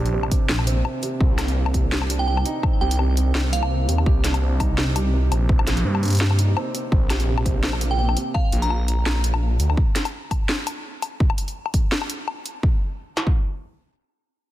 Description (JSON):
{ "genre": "half-time drum and bass", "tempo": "168 BPM", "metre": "4/4", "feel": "swing 54% on 16ths, half-time", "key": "unclear", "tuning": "A4 = 440 Hz", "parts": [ { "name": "felt-muted upright piano", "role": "arpeggios", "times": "0.0-8.4 s", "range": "C3 to G4", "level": "-28 LUFS", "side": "right 3 dB", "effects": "tape echo" }, { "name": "phased detuned saw bass", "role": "bass", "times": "0.0-9.8 s", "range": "Bb1 to G2", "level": "-20 LUFS", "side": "equal", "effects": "phaser" }, { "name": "drum and bass drum kit", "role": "drums", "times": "0.1-12.5 s", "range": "hi-hat, snare drum, woodblock", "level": "-26 LUFS", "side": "left 2 dB", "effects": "overdrive" }, { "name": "industrial drum kit", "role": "drums", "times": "0.3-13.3 s", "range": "kick drum, snare drum", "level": "-20 LUFS", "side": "equal", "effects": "none" }, { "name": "glassy synth bell", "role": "melody", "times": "2.2-4.0, 7.9-9.1 s", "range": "F5 to Bb5", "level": "-29 LUFS", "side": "right 2 dB", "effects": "chorus, tremolo, ping-pong delay" } ], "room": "digital ambience", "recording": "dense, heavily limited modern master", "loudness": "-19 LUFS", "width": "side -14 dB against mid", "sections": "0.0-12.6 A section; 12.6-14.5 B section", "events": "drop 0.0-12.6; break 0.8-1.2", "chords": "0.0 Bbadd9; 1.2 Cm7; 6.9 Bbsus2; 12.6 N.C.", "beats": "0.14 0.49 0.85 | 1.21 1.56 1.92 2.28 | 2.63 2.99 3.35 3.71 | 4.06 4.42 4.78 5.13 | 5.49 5.85 6.21 6.56 | 6.92 7.28 7.63 7.99 | 8.35 8.71 9.06 9.42 | 9.78 10.13 10.49 10.85 | 11.21 11.56 11.92 12.28 | 12.63 12.99" }